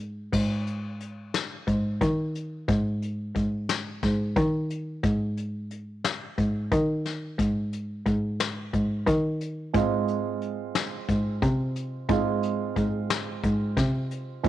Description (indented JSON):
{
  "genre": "progressive instrumental, band music in an uneven meter",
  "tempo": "179 BPM (eighths)",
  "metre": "7/8",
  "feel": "straight",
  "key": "Ab major",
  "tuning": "A4 = 440 Hz",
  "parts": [
    { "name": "warm cello", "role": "bass", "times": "0.0-14.5 s", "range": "Ab2 to Eb3", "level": "-26 LUFS", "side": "equal", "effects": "none" },
    { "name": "vintage brush drum kit", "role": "drums", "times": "0.3-14.5 s", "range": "crash cymbal, hi-hat, kick drum, snare drum", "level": "-30 LUFS", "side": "left 3 dB", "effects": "none" },
    { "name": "dark concert grand piano", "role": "accompaniment", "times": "9.7-14.5 s", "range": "Ab3 to F4", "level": "-30 LUFS", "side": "right 11 dB", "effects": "none" }
  ],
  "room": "small room ambience",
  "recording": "1960s-style stereo",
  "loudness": "-25 LUFS",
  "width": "side -13 dB against mid",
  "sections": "0.3-14.5 A section",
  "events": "none",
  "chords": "0.3 Ab5; 9.7 Fm/Ab",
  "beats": "| 0.33 0.66 1.00 1.34 1.67 2.01 2.35 | 2.68 3.02 3.36 3.69 4.03 4.37 4.70 | 5.04 5.37 5.71 6.05 6.38 6.72 7.05 | 7.39 7.73 8.06 8.40 8.73 9.07 9.41 | 9.74 10.08 10.41 10.75 11.09 11.42 11.76 | 12.09 12.43 12.77 13.10 13.44 13.77 14.11 | 14.45"
}